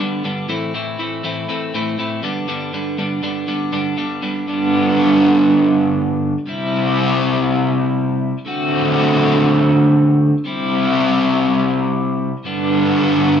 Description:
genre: rock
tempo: 120 BPM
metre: 4/4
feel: straight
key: unclear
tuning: A4 = 440 Hz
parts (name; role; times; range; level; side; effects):
- crunchy overdriven guitar; solo; 0.0-13.4 s; G2 to F#4; -15 LUFS; equal; slapback echo
room: wet echo chamber reverb, RT60 1.8 s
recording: none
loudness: -15 LUFS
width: side -8 dB against mid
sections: 0.0-4.5 A section; 4.5-13.4 B section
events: none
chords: 0.5 Am; 2.2 G; 6.5 C; 8.5 D7; 10.4 C; 12.4 G

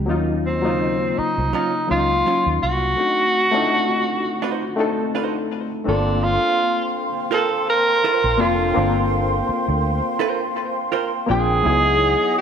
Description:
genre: R&B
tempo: 83 BPM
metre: 4/4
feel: swing 53% on 16ths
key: unclear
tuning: A4 = 440 Hz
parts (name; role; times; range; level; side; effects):
- barky reed electric piano; accompaniment; 0.0-12.4 s; Db3 to G5; -23 LUFS; left 4 dB; overdrive, ensemble chorus
- vintage muted fingered electric bass; bass; 0.0-12.1 s; F1 to Eb2; -23 LUFS; right 1 dB; none
- breathy tenor saxophone; melody; 0.5-12.4 s; C4 to Bb4; -20 LUFS; right 1 dB; ping-pong delay
- hollow-body jazz guitar; second line; 1.5-11.1 s; Gb3 to C5; -26 LUFS; right 8 dB; ping-pong delay
- breathy mellow large flute ensemble; sustained chords; 5.9-12.4 s; C5 to Eb6; -24 LUFS; right 2 dB; none
room: moderate lush hall reverb, RT60 1.9 s, studio ambience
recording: dreamy mix soaked in reverb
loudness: -17 LUFS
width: side -7 dB against mid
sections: 0.0-5.9 A section; 5.9-12.4 B section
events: none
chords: 0.1 Ebm9; 3.0 D7b9; 5.9 Gm11; 11.6 Dbm11

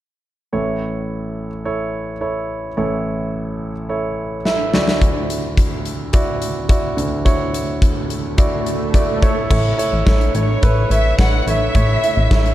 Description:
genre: piano-driven pop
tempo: 107 BPM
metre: 4/4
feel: straight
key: A major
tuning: A4 = 440 Hz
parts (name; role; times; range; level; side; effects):
- warm concert grand piano; accompaniment; 0.5-12.5 s; A1 to E5; -20 LUFS; right 1 dB; none
- huge arena drum kit; drums; 4.5-12.5 s; crash cymbal, hi-hat, kick drum, snare drum; -18 LUFS; equal; none
- swell; sound effects; 7.8-9.5 s; none; -27 LUFS; right 1 dB; none
- plucky analog bass; bass; 9.5-12.5 s; A1; -17 LUFS; equal; none
- warm studio violin section; melody; 10.4-12.5 s; C#5 to F#5; -21 LUFS; equal; none
room: light reverb, small room ambience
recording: dark, warm production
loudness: -16 LUFS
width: side -14 dB against mid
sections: 0.5-9.5 A section; 9.5-12.5 B section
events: drum fill 4.5-5.0; swell 7.8-9.5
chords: 0.5 A; 4.7 Dadd9; 9.2 A

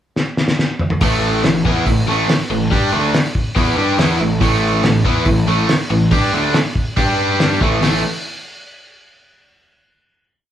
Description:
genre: classic rock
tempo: 141 BPM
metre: 4/4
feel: straight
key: unclear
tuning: A4 = 440 Hz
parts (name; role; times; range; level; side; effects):
- cloth-damped thuddy drum kit; drums; 0.2-7.9 s; hi-hat, kick drum, snare drum, toms; -18 LUFS; equal; none
- cranked stack guitar; riff; 1.0-8.0 s; A2 to G4; -18 LUFS; right 4 dB; overdrive
- overdriven electric guitar; riff; 1.0-8.0 s; A2 to G4; -20 LUFS; left 5 dB; none
- fuzz picked electric bass; bass; 1.0-8.0 s; A1 to G2; -21 LUFS; equal; overdrive
room: moderate large studio reverb, RT60 1.1 s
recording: band playing live in one room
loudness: -13 LUFS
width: side -10 dB against mid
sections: 0.0-1.0 pickup bar; 1.0-7.8 riff; 7.8-9.5 final chord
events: drum fill 0.2-1.0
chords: 0.0 N.C.; 1.0 A5; 7.0 G5; 7.6 A5

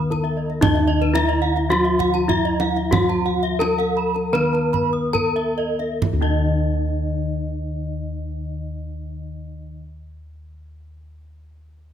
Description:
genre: Balinese gamelan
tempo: 65-118 BPM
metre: 4/4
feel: straight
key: Eb pelog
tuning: A4 = 435 Hz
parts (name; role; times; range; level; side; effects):
- gamelan-type bronze metallophone; melody; 0.0-9.8 s; Eb4 to Cb5-20c; -22 LUFS; equal; none
- gamelan-type bronze metallophone; accompaniment; 0.0-9.8 s; Eb3 to Cb4-20c; -28 LUFS; left 1 dB; none
- gamelan-type bronze metallophone; arpeggios; 0.0-9.8 s; Cb5-20c to Eb6; -29 LUFS; left 7 dB; none
- gamelan-type bossed gongs; bass; 0.0-9.7 s; Eb2 to Gb4-30c; -25 LUFS; left 1 dB; none
- kendang; percussion; 0.1-6.5 s; none; -24 LUFS; right 3 dB; none
- gamelan-type bronze metallophone; arpeggios; 0.2-9.8 s; Eb5 to Cb6-20c; -29 LUFS; right 8 dB; none
room: light reverb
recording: close, detailed microphones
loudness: -18 LUFS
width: side -9 dB against mid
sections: 0.0-6.0 A section; 6.0-11.9 B section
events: slowing down 0.6-6.0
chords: none

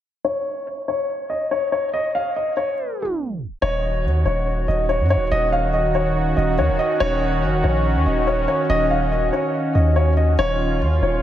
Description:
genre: hip hop, drill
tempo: 142 BPM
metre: 4/4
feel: half-time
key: Eb minor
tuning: A4 = 440 Hz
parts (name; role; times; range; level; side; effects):
- dark baby grand piano; melody; 0.2-11.2 s; Db5 to F5; -21 LUFS; left 1 dB; low-pass filter, tape echo
- warm analog pad; sustained chords; 3.6-11.2 s; Eb3 to Gb4; -23 LUFS; right 1 dB; chorus
- long sustained 808-style bass; bass; 3.6-11.2 s; Eb1 to Gb2; -20 LUFS; equal; none
room: moderate cathedral reverb, RT60 5.3 s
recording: dreamy mix soaked in reverb, tape stop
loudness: -18 LUFS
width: side -11 dB against mid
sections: 0.2-3.6 A section; 3.6-11.2 B section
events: filter sweep on grand piano 0.2-3.6; tape stop 2.8-3.6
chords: 0.2 N.C.; 3.6 Ebm7; 10.4 Db/Eb

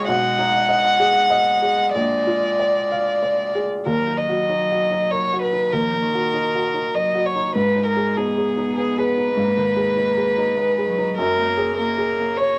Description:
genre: neoclassical piano and strings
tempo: 98 BPM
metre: 3/4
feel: rubato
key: Eb minor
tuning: A4 = 438 Hz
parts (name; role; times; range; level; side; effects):
- warm violin; melody; 0.0-12.6 s; Ab4 to Gb5; -22 LUFS; equal; none
- clear cello; second line; 0.0-12.6 s; Eb3 to Cb4; -32 LUFS; equal; none
- felt-muted upright piano; accompaniment; 0.0-12.6 s; Bb1 to F5; -26 LUFS; equal; none
room: moderate studio ambience, RT60 0.5 s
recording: none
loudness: -20 LUFS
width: mono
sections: 0.0-3.9 A section; 3.9-12.6 B section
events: none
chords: 0.1 Abm7/Cb; 1.9 Bb7; 3.9 Ebm; 7.5 Abm; 11.2 Gbadd9

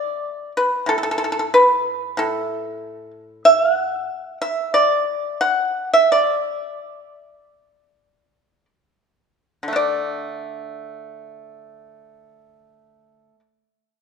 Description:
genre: chinese traditional, Chinese solo plucked strings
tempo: 56-94 BPM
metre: 4/4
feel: rubato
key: D gong mode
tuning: A4 = 440 Hz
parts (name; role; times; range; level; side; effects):
- pipa; solo; 0.0-13.4 s; A2 to F#5; -17 LUFS; equal; none
room: moderate scoring stage reverb, RT60 1.7 s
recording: minimal, uncompressed stereo recording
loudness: -17 LUFS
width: side -6 dB against mid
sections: 0.0-9.8 A section; 9.8-13.7 B section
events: slowing down 3.5-9.8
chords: none

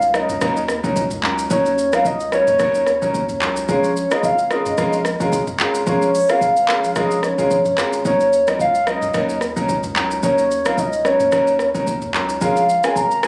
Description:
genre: afrobeats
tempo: 110 BPM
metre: 4/4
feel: swing 55% on 16ths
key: unclear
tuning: A4 = 440 Hz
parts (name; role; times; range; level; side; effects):
- soft octave-layered synth lead; melody; 0.0-13.3 s; Db5 to Bb5; -20 LUFS; equal; chorus, digital delay
- round analog bass; bass; 0.0-13.3 s; Ab1 to Eb2; -32 LUFS; equal; none
- afro-pop drum kit; drums; 0.0-13.3 s; handclaps, hi-hat, kick drum, rim click, shaker, toms; -26 LUFS; equal; none
- clear baby grand piano; accompaniment; 0.1-13.3 s; Gb3 to Bb4; -24 LUFS; equal; none
room: light reverb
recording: recorded on a phone in the room, club reverb, compression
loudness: -18 LUFS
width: mono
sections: 0.0-13.3 A section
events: none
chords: 0.0 Ebm7; 3.7 Bbm7; 8.1 Ebm7; 12.4 Bbm7

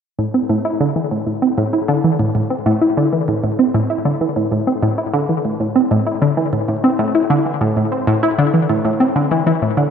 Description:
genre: ambient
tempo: 97 BPM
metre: 4/4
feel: straight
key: A minor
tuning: A4 = 437 Hz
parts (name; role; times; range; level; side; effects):
- analog pluck; solo; 0.2-9.8 s; A2 to E4; -14 LUFS; equal; chorus, ping-pong delay
room: wet spring reverb, RT60 2.5 s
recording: echo-heavy mix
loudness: -14 LUFS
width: side -7 dB against mid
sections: 0.2-9.9 A section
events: none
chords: none

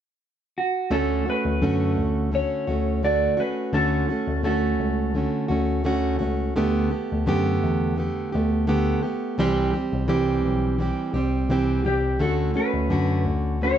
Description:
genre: acoustic pop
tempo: 85 BPM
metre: 4/4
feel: swing 55% on 16ths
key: D major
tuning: A4 = 439 Hz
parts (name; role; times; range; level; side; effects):
- clean lap steel guitar; melody; 0.6-6.2, 11.9-13.8 s; F#4 to D5; -26 LUFS; equal; none
- fingerpicked plugged-in steel-string acoustic guitar; accompaniment; 0.9-13.8 s; C3 to G4; -23 LUFS; right 2 dB; none
- bell-like tine electric piano; bass; 0.9-13.7 s; B1 to F#2; -25 LUFS; left 2 dB; none
room: moderate studio reverb, RT60 0.6 s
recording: nothing above 8.0 kHz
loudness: -21 LUFS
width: side -9 dB against mid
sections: 0.9-13.8 A section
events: none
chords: 0.0 N.C.; 0.9 Dmaj7; 6.6 Gadd9/D; 9.4 C; 12.2 Dmaj7

